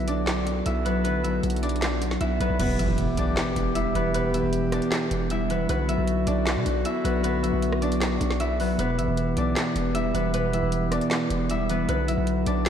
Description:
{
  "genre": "hip hop, trap",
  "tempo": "155 BPM",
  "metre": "4/4",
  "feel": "half-time",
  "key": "E minor",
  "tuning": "A4 = 440 Hz",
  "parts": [
    { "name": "concert harp", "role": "melody", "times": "0.0-12.7 s", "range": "B3 to E5", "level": "-28 LUFS", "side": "left 1 dB", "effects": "tape echo" },
    { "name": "mellow electric guitar", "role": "accompaniment", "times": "0.0-12.7 s", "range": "B2 to D5", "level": "-28 LUFS", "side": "equal", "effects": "wide subtle chorus" },
    { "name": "mellow woodwind section", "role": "sustained chords", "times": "0.0-12.7 s", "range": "D3 to G4", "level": "-33 LUFS", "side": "left 1 dB", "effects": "stereo widening" },
    { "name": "hard-hitting 808-style bass", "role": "bass", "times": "0.0-12.7 s", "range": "E1 to B2", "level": "-28 LUFS", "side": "equal", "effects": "none" },
    { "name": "trap drum kit", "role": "drums", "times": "0.1-12.7 s", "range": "crash cymbal, handclaps, hi-hat, rim click, snare drum", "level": "-31 LUFS", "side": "equal", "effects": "none" },
    { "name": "impact", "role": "sound effects", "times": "2.6-4.1 s", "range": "none", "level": "-32 LUFS", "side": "equal", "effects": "none" }
  ],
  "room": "wet lush hall reverb, RT60 2.0 s",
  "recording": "dreamy mix soaked in reverb",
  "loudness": "-22 LUFS",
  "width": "side -8 dB against mid",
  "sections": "0.0-2.6 A section; 2.6-12.7 B section",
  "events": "impact 2.6-4.1",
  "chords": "0.0 Bm; 2.6 Em; 5.7 Bm; 8.8 Em; 11.9 Bm"
}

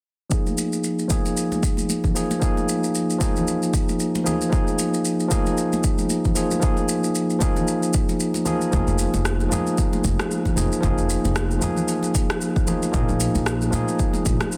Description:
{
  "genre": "organic downtempo",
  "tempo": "114 BPM",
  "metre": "4/4",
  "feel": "swing 57% on 16ths",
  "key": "unclear",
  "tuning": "A4 = 440 Hz",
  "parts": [
    { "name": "tine electric piano", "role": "accompaniment", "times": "0.3-14.6 s", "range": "F3 to Ab4", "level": "-25 LUFS", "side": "equal", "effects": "sidechain pumping, low-pass filter, digital delay" },
    { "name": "electronic kick drum", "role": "drums", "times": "0.3-14.4 s", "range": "none", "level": "-25 LUFS", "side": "equal", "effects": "none" },
    { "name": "electronic shaker and rim click", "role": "drums", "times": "0.3-14.6 s", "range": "none", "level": "-31 LUFS", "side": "equal", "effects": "soft clipping on snare" },
    { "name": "congas", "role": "percussion", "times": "0.5-14.5 s", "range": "none", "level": "-34 LUFS", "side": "equal", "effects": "none" },
    { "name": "upright bass", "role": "bass", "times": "8.7-14.4 s", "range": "F1 to Bb2", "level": "-26 LUFS", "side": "equal", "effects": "none" }
  ],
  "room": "moderate echo chamber reverb, RT60 2.8 s",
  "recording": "dense, heavily limited modern master",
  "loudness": "-22 LUFS",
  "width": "mono",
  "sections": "0.3-8.7 A section; 8.7-14.6 B section",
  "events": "filter sweep on tine electric piano 0.3-8.7",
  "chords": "0.3 Bb7sus4"
}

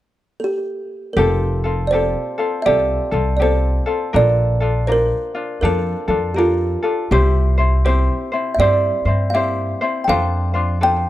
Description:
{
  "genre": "Hawaiian",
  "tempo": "81 BPM",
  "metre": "4/4",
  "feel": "swing 62% on 8ths",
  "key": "F major",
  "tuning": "A4 = 439 Hz",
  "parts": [
    { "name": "kalimba", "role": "melody", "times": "0.4-11.1 s", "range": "F4 to G5", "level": "-20 LUFS", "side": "right 2 dB", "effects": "slapback echo" },
    { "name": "ukulele", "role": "accompaniment", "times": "1.2-11.1 s", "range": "C4 to C5", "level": "-21 LUFS", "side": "left 4 dB", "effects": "none" },
    { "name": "upright bass", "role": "bass", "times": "1.2-11.0 s", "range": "F1 to G2", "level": "-18 LUFS", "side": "equal", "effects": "none" }
  ],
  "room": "small room reverb",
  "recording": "dry, close 1970s-style studio recording",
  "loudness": "-16 LUFS",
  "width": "side -14 dB against mid",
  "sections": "0.0-1.2 A section; 1.2-11.1 B section",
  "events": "none",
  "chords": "0.0 N.C.; 1.2 Fadd9; 4.1 Bbmaj7; 7.1 C; 10.1 F6"
}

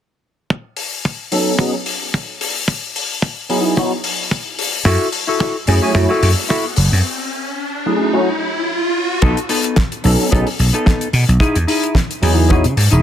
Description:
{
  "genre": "nu-disco, nu disco",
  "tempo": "110 BPM",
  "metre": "4/4",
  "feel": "swing 55% on 16ths",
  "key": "unclear",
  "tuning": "A4 = 439 Hz",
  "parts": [
    { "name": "kick drum", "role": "drums", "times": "0.5-12.6 s", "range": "none", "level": "-15 LUFS", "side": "equal", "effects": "high-pass filter on kick, small room ambience, high-pass filter on snare, high-pass filter on room" },
    { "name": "damped 70s drum kit", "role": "drums", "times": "0.8-13.0 s", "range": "hi-hat, snare drum", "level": "-21 LUFS", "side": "left 4 dB", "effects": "small room ambience" },
    { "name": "tine electric piano", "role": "accompaniment", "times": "1.3-12.6 s", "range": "F#3 to A4", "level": "-19 LUFS", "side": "equal", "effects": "ensemble chorus, sidechain pumping, dub echo" },
    { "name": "mellow electric guitar", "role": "riff", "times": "4.9-13.0 s", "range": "B3 to A4", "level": "-20 LUFS", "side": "left 2 dB", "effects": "wide subtle chorus, dub echo" },
    { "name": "vintage slap bass", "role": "bass", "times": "4.9-13.0 s", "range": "E1 to C#3", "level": "-14 LUFS", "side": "equal", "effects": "none" },
    { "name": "riser", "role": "sound effects", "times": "6.3-9.2 s", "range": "none", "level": "-22 LUFS", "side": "right 1 dB", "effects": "none" }
  ],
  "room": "light reverb, small room reverb",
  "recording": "none",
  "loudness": "-14 LUFS",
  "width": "side -10 dB against mid",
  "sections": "0.5-9.2 A section; 9.2-13.0 B section",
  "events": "riser 6.3-9.2; break 7.0-9.2",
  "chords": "0.5 B7; 2.7 Emaj7; 4.9 F#m7; 9.2 B7; 11.4 Emaj7"
}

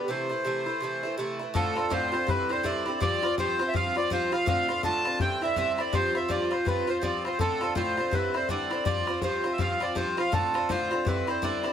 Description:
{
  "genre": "celtic folk, Celtic hornpipe",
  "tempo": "164 BPM",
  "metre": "4/4",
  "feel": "swing 61% on 8ths",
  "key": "unclear",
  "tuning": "A4 = 441 Hz",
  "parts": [
    { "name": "accordion", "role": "melody", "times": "0.0-11.7 s", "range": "A4 to A5", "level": "-28 LUFS", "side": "right 1 dB", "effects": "plate reverb" },
    { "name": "Irish bouzouki", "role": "accompaniment", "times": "0.0-11.7 s", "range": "G2 to F4", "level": "-29 LUFS", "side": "equal", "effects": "none" },
    { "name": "bodhran", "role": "percussion", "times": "1.5-11.7 s", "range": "none", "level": "-32 LUFS", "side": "left 3 dB", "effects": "none" }
  ],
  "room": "moderate studio reverb, RT60 0.7 s",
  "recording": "none",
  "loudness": "-25 LUFS",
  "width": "side -9 dB against mid",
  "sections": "0.0-1.6 A section; 1.6-11.7 B section",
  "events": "none",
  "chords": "0.1 Am; 1.6 Dm7; 2.3 Cadd9; 3.0 Fsus2; 4.5 Dm7; 5.2 Cadd9; 5.9 Fsus2; 7.4 Dm7; 8.1 Cadd9; 8.9 Fsus2; 10.3 Dm7; 11.1 Cadd9"
}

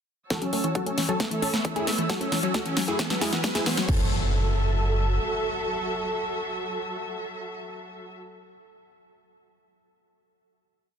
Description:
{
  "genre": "uplifting trance",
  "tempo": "134 BPM",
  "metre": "4/4",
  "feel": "straight",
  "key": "F# minor",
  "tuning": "A4 = 440 Hz",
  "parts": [
    { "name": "supersaw stab", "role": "melody", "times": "0.3-8.2 s", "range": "A3 to A4", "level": "-30 LUFS", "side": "right 1 dB", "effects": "cassette tape, sidechain pumping, low-pass filter, ping-pong delay" },
    { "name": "dark chamber string section", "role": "sustained chords", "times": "0.3-8.2 s", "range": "F#3 to E6", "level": "-34 LUFS", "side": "right 1 dB", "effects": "sidechain pumping" },
    { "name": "analog pluck", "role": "arpeggios", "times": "0.3-4.1 s", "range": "E3 to B3", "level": "-32 LUFS", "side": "left 4 dB", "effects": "chorus, sidechain pumping" },
    { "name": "big-room dance drum kit", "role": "drums", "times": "0.3-4.0 s", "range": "crash cymbal, hi-hat, snare drum", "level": "-30 LUFS", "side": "equal", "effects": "none" },
    { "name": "electronic kick drum", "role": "drums", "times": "0.3-4.0 s", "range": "none", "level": "-28 LUFS", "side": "equal", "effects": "high-pass filter on kick" },
    { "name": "riser and impact", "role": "sound effects", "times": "1.8-8.2 s", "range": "none", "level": "-36 LUFS", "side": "right 1 dB", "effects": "none" },
    { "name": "solid FM bass", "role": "bass", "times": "0.5-5.2 s", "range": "F#1 to A1", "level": "-26 LUFS", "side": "equal", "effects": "sidechain pumping, high-pass filter" }
  ],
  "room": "light reverb, digital ambience",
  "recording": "dense, heavily limited modern master",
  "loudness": "-24 LUFS",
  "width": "side -8 dB against mid",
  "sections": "0.3-3.9 build; 3.9-7.5 final chord",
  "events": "build-up 0.3-3.9; drum fill 0.3-3.9; filter sweep on supersaw synth 0.3-3.9; filter sweep on synth pluck 0.3-3.9; riser 1.8-3.9",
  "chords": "0.3 F#m7; 1.2 Aadd9; 2.1 F#m7; 3.0 Eadd9; 3.9 F#m7"
}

